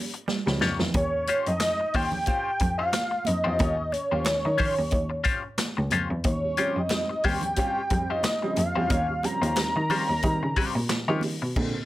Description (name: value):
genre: funk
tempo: 90 BPM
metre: 4/4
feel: swing 56% on 16ths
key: unclear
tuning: A4 = 445 Hz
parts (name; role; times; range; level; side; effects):
- semi-hollow electric guitar; riff; 0.0-0.9 s; F3 to Bb3; -32 LUFS; right 5 dB; analog chorus
- warm upright piano; stabs; 0.0-0.9, 6.4-11.7 s; Db3 to Db4; -32 LUFS; right 3 dB; slapback echo
- clean electric guitar; accompaniment; 0.1-11.5 s; Bb3 to Db5; -29 LUFS; left 6 dB; wah
- vintage drum kit; drums; 0.1-11.7 s; crash cymbal, handclaps, hi-hat, kick drum, snare drum; -29 LUFS; equal; none
- congas; percussion; 0.3-11.7 s; none; -36 LUFS; right 4 dB; none
- rich cello; bass; 0.5-11.8 s; Db2 to Eb3; -28 LUFS; equal; none
- fat analog lead; melody; 1.0-11.2 s; Db5 to Bb5; -27 LUFS; equal; slapback echo
room: light reverb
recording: none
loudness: -23 LUFS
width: side -16 dB against mid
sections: 0.9-11.6 A section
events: drum fill 0.3-0.9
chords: 0.0 Eb9; 0.9 Eb13